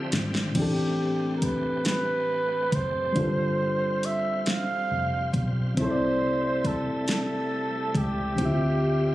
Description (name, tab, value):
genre	slow six-eight R&B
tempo	46 BPM (dotted quarters)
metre	6/8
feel	straight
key	A minor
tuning	A4 = 439 Hz
part	mellow flugelhorn	melody	0.0-9.1 s	G4 to F5	-28 LUFS	right 2 dB	slapback echo
part	reed electric piano	accompaniment	0.0-9.1 s	A2 to E5	-28 LUFS	left 1 dB	none
part	bright tonewheel organ	sustained chords	0.0-9.1 s	C3 to E5	-37 LUFS	equal	overdrive, chorus vibrato, fast rotary speaker
part	vintage muted fingered electric bass	bass	0.0-9.1 s	F1 to D2	-31 LUFS	equal	none
part	smooth R&B drum kit	drums	0.1-8.6 s	crash cymbal, hi-hat, kick drum, snare drum	-29 LUFS	equal	none
room	light reverb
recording	recorded on a phone in the room, club reverb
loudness	-24 LUFS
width	side -15 dB against mid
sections	0.6-9.1 A section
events	drum fill 0.0-0.6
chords	0.0 Dm11; 0.6 Am11; 3.2 G7sus4; 5.8 C6; 8.4 Dm11